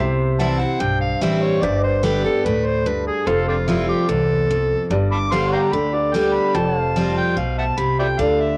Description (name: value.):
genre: country.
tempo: 146 BPM.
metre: 4/4.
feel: straight.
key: C major.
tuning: A4 = 440 Hz.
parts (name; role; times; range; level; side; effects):
dark upright piano; accompaniment; 0.0-8.6 s; D4 to F5; -34 LUFS; equal; none.
picked steel-string acoustic guitar; accompaniment; 0.0-8.6 s; E2 to G4; -22 LUFS; equal; cassette tape.
pedal steel guitar; sustained chords; 0.0-8.2 s; B4 to G5; -31 LUFS; equal; cassette tape.
upright bass; bass; 0.0-8.6 s; F1 to D2; -28 LUFS; equal; none.
overdriven harmonica; second line; 0.4-8.6 s; C4 to D6; -25 LUFS; equal; cassette tape.
room: light reverb.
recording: home recording on cassette.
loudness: -19 LUFS.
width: mono.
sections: 0.0-8.6 A section.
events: harmonica solo 0.0-8.6.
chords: 0.0 C; 1.6 G; 3.3 Fadd9; 4.9 G; 6.5 Fadd9.